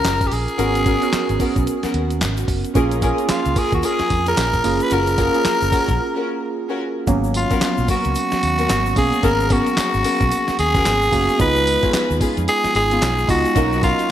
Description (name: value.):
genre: R&B, new jack swing.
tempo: 111 BPM.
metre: 4/4.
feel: swing 60% on 16ths.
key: G# dorian.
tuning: A4 = 440 Hz.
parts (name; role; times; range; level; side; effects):
raspy tenor saxophone; melody; 0.0-14.1 s; E#4 to B4; -20 LUFS; equal; none.
warm analog keys; accompaniment; 0.0-14.1 s; F#3 to A#4; -22 LUFS; right 3 dB; chorus.
dark studio string section; stabs; 0.0-14.0 s; B3 to A#4; -26 LUFS; left 4 dB; none.
vintage muted fingered electric bass; bass; 0.0-13.9 s; F#1 to E#2; -23 LUFS; equal; none.
dusty soul sampler-style drum kit; drums; 0.0-14.1 s; handclaps, hi-hat, kick drum, snare drum, tambourine; -23 LUFS; equal; gated reverb.
tube shaker; percussion; 0.1-14.1 s; none; -39 LUFS; left 9 dB; none.
room: moderate plate reverb, RT60 2.4 s.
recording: bright 1980s-style digital production.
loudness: -16 LUFS.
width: side -11 dB against mid.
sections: 0.0-7.1 A section; 7.1-14.1 B section.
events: break 6.0-7.1.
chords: 0.0 F#maj7; 0.6 G#m11; 2.8 A#m7; 4.6 F#maj7; 7.1 G#m11; 11.4 C#7; 13.6 Bmaj7.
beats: 0.05 | 0.59 1.13 1.67 2.21 | 2.75 3.29 3.83 4.37 | 4.91 5.45 5.99 6.53 | 7.07 7.61 8.15 8.70 | 9.24 9.78 10.32 10.86 | 11.40 11.94 12.48 13.02 | 13.56 14.10.